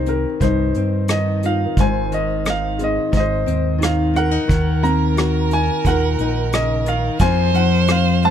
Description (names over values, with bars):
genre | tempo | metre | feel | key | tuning
acoustic folk-pop ballad | 88 BPM | 4/4 | straight | unclear | A4 = 442 Hz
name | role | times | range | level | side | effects
clear upright piano | melody | 0.0-8.3 s | Eb4 to Bb5 | -22 LUFS | right 1 dB | none
nylon-string guitar | accompaniment | 0.0-8.3 s | F2 to G4 | -22 LUFS | left 7 dB | none
felt-muted upright piano | arpeggios | 0.0-5.8 s | C4 to C5 | -29 LUFS | right 4 dB | none
fingered electric bass | bass | 0.0-8.3 s | Ab1 to G2 | -20 LUFS | right 1 dB | none
vintage brush drum kit | drums | 0.1-8.3 s | hi-hat, kick drum, rim click | -21 LUFS | right 1 dB | none
rich violin | second line | 4.5-8.3 s | Bb4 to C5 | -24 LUFS | right 9 dB | none
room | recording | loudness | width
little or no reverb | close, detailed microphones | -16 LUFS | side -9 dB against mid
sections
0.0-8.3 A section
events
none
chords
0.0 Cm; 1.8 Ab; 4.5 Ebm; 7.2 Fsus4